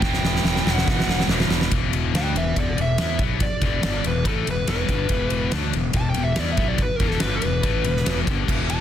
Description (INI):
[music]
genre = hard rock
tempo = 142 BPM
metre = 4/4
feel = straight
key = E minor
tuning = A4 = 440 Hz
[part]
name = nasal lead guitar with a parked wah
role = melody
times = 0.0-8.8 s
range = A4 to A5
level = -27 LUFS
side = right 1 dB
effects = overdrive, plate reverb
[part]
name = scooped high-gain guitar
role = riff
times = 0.0-8.8 s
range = E2 to E4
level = -26 LUFS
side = left 9 dB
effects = distortion
[part]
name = tight distorted guitar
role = riff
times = 0.0-1.7 s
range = E2 to E3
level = -27 LUFS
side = right 18 dB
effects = distortion
[part]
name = fuzz fingered electric bass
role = bass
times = 0.0-8.8 s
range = E1 to E2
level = -25 LUFS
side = equal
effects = overdrive
[part]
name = huge arena drum kit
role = drums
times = 0.0-8.8 s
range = crash cymbal, kick drum, ride cymbal, snare drum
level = -24 LUFS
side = equal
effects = none
[sound]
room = little or no reverb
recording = dense, heavily limited modern master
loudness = -19 LUFS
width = side -10 dB against mid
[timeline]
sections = 0.0-1.7 A section; 1.7-8.8 B section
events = drum fill 0.0-1.7; lead electric guitar solo 1.7-8.8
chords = 0.0 Em